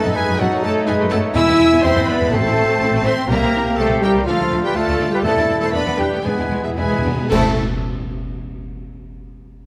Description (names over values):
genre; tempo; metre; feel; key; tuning
classical, dramatic, fast romantic movement for symphony orchestra; 111-127 BPM; 4/4; rubato; unclear; A4 = 440 Hz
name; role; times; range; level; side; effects
warm symphonic violin section; melody; 0.0-7.6 s; E5 to E6; -29 LUFS; equal; none
dark clarinet; second line; 0.0-7.5 s; E4 to E5; -29 LUFS; equal; none
rich symphonic violin section; second line; 0.0-7.6 s; G3 to F4; -30 LUFS; equal; none
silver concert flute; second line; 0.0-7.6 s; G#4 to A5; -27 LUFS; equal; none
rich symphonic viola section; accompaniment; 0.0-7.6 s; E4 to E5; -27 LUFS; equal; none
warm bassoon; accompaniment; 0.0-7.0 s; B3 to G4; -26 LUFS; equal; none
dark French horn section; sustained chords; 0.0-7.5 s; E3 to E4; -25 LUFS; equal; none
dark symphonic double bass section; bass; 0.0-7.6 s; A1 to F#2; -26 LUFS; equal; none
rich symphonic cello section; bass; 0.0-7.6 s; E3 to E4; -27 LUFS; equal; none
timpani; percussion; 1.4-7.5 s; E2 to A2; -28 LUFS; equal; none
cymbal swell, clash cymbals and concert bass drum; percussion; 3.3-8.3 s; none; -32 LUFS; equal; none
room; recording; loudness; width
wet scoring stage reverb, RT60 1.6 s; none; -17 LUFS; mono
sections
0.0-7.3 A section; 7.3-9.4 B section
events
slowing down 2.3-7.3; timpani fill 6.2-7.3; band accent 7.3-7.8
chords
0.0 B7/F#; 1.4 E; 2.3 Am; 3.3 C7; 4.3 Dm; 5.2 E7sus4; 6.2 E; 7.3 N.C.